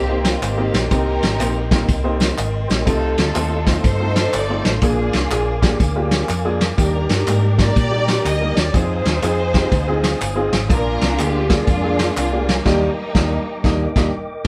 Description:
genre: uptempo gospel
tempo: 122 BPM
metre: 4/4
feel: swing 65% on 8ths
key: Eb major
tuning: A4 = 441 Hz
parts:
  - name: warm studio string section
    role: melody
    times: 0.0-14.1 s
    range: G3 to Eb5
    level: -26 LUFS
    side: equal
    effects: none
  - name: mellow tonewheel organ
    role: sustained chords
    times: 0.0-14.5 s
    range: A4 to Eb6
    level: -30 LUFS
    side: equal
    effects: chorus vibrato, fast rotary speaker
  - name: hollow-body short-scale fingered electric bass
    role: bass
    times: 0.0-14.1 s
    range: G1 to Bb2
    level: -24 LUFS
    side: equal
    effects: none
  - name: clear upright piano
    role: accompaniment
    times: 0.1-14.1 s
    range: Bb2 to Eb5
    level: -25 LUFS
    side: equal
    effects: none
  - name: vintage brush drum kit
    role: drums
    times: 0.2-14.5 s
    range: crash cymbal, kick drum, ride cymbal, snare drum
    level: -22 LUFS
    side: equal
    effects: none
  - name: tambourine and handclaps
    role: percussion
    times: 0.2-12.6 s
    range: none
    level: -34 LUFS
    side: equal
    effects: none
room: wet small room reverb, RT60 0.5 s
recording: band playing live in one room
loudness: -18 LUFS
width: mono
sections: 0.0-14.5 A section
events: band accent 12.7-14.5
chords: 0.0 Eb6; 2.9 F7/C; 4.8 Bb7; 6.8 Ebmaj7; 8.7 Fm7; 10.7 Bb7; 12.7 Ebmaj7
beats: 0.42 | 0.91 1.40 1.89 2.38 | 2.87 3.35 3.84 4.33 | 4.82 5.31 5.80 6.29 | 6.78 7.27 7.76 8.25 | 8.74 9.23 9.72 10.21 | 10.70 11.19 11.68 12.17 | 12.66 13.15 13.64 14.13

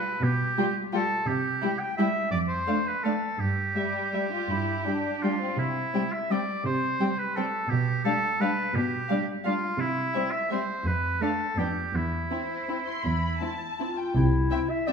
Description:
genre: classical, orchestral ballroom waltz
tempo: 155-186 BPM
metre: 3/4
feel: rubato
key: C major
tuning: A4 = 440 Hz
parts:
  - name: warm oboe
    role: second line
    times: 0.0-13.8 s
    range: E4 to G5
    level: -29 LUFS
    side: right 1 dB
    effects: none
  - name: muted studio cello section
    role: bass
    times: 0.2-14.4 s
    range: E2 to C3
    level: -29 LUFS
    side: right 2 dB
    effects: none
  - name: muted studio violin section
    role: melody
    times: 0.6-14.9 s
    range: C5 to C6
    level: -37 LUFS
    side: left 4 dB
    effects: none
  - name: muted studio violin section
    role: second line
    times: 0.6-14.9 s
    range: G3 to E5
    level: -34 LUFS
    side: left 3 dB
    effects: none
  - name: muted studio viola section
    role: accompaniment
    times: 0.6-14.9 s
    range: G3 to C4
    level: -31 LUFS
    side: equal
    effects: none
  - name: clear clarinet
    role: second line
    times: 13.8-14.9 s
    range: E4 to E5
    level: -27 LUFS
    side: left 4 dB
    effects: none
  - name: muted studio double bass section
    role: bass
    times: 14.1-14.4 s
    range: C2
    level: -27 LUFS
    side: right 1 dB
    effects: none
room: wet recital hall reverb, RT60 1.6 s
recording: minimal, uncompressed stereo recording, faint mains hum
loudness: -25 LUFS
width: side -6 dB against mid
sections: 0.0-14.2 A section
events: none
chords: 0.0 G/B; 1.3 C; 2.3 Dm/F (rootless); 3.4 N.C.; 5.6 C; 7.7 G7/B; 9.8 C; 10.9 Dm/F (rootless); 11.6 G7(no3)/F; 11.9 C/E; 14.2 C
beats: | 0.22 0.57 0.93 | 1.26 1.61 1.98 | 2.32 2.67 3.04 | 3.39 3.76 4.14 | 4.50 4.86 5.23 | 5.58 5.94 6.31 | 6.65 7.00 7.37 | 7.71 8.05 8.41 | 8.75 9.09 9.45 | 9.79 10.14 10.51 | 10.86 11.21 11.58 | 11.94 12.31 12.69 | 13.05 13.41 13.80 | 14.15 14.51 14.88

